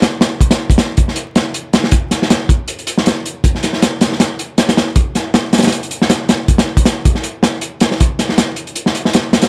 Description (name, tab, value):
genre	drum and bass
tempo	158 BPM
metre	4/4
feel	swing 55% on 16ths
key	none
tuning	none
part	crunchy breakbeat drum kit	drums	0.0-9.5 s	hi-hat, kick drum, snare drum	-14 LUFS	equal	none
room	little or no reverb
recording	vinyl crackle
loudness	-15 LUFS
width	mono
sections	0.0-9.5 A section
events	none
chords	none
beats	0.02 | 0.40 0.78 1.16 1.54 | 1.92 2.30 2.68 3.06 | 3.44 3.82 4.20 4.58 | 4.96 5.34 5.72 6.10 | 6.48 6.86 7.24 7.62 | 8.00 8.38 8.76 9.14